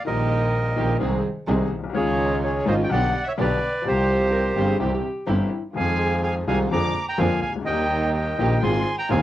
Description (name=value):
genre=tango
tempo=126 BPM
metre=4/4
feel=rubato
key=unclear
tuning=A4 = 440 Hz
part: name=bandoneon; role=melody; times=0.0-9.2 s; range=G4 to D6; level=-25 LUFS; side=right 2 dB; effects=none
part: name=warm studio violin section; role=second line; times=0.0-9.2 s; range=C5 to D6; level=-34 LUFS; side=left 5 dB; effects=cassette tape
part: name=clear upright piano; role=accompaniment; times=0.0-9.2 s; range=Eb1 to Ab4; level=-27 LUFS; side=left 6 dB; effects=cassette tape
part: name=dark chamber string section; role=stabs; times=0.0-9.2 s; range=Bb3 to Ab4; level=-28 LUFS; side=right 5 dB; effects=cassette tape
part: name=clear double bass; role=bass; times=0.1-9.2 s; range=G1 to F2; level=-24 LUFS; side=right 1 dB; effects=none
part: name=vintage hollow-body jazz guitar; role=second line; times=4.3-5.6 s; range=E4 to Bb4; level=-29 LUFS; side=left 1 dB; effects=cassette tape
room=moderate studio reverb, RT60 0.6 s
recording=home recording on cassette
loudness=-20 LUFS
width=side -13 dB against mid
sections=0.0-9.2 A section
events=none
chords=0.1 Eb/Bb; 1.0 Ab/C; 2.0 Dbadd9; 2.9 G/B; 3.9 Csus4; 4.8 C; 5.8 Fm7; 6.7 Bb7/F; 7.7 Eb; 8.6 Ab6